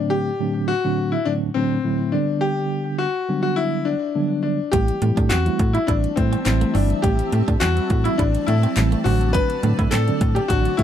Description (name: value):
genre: dance-pop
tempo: 104 BPM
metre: 4/4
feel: straight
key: A dorian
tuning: A4 = 440 Hz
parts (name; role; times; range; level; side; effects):
- clear concert grand piano; melody; 0.0-10.8 s; C4 to B4; -23 LUFS; left 6 dB; tape echo
- mellow tine electric piano; accompaniment; 0.0-10.8 s; A2 to E4; -24 LUFS; right 3 dB; medium stereo tremolo, sidechain pumping
- shimmering ambient pad; sustained chords; 5.9-10.8 s; G3 to A5; -30 LUFS; right 1 dB; chorus, built-in reverb, sidechain pumping
- clean electric guitar; riff; 4.7-10.8 s; A3 to E4; -29 LUFS; right 7 dB; wide subtle chorus
- slap-like FM bass; bass; 4.7-10.8 s; G1 to A2; -20 LUFS; equal; sidechain pumping
- pop drum kit; drums; 4.7-10.8 s; handclaps, hi-hat, kick drum, snare drum; -23 LUFS; equal; overdrive
- group handclap; percussion; 5.3-10.1 s; none; -33 LUFS; left 11 dB; none
room: little or no reverb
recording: dry, close 1970s-style studio recording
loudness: -18 LUFS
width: side -10 dB against mid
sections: 0.0-10.8 A section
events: none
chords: 0.0 D7/A; 2.1 Gmaj7; 4.7 Am7; 9.1 D7/A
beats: | 0.12 0.69 1.27 1.85 | 2.42 3.00 3.58 4.15 | 4.73 5.31 5.88 6.46 | 7.04 7.62 8.19 8.77 | 9.35 9.92 10.50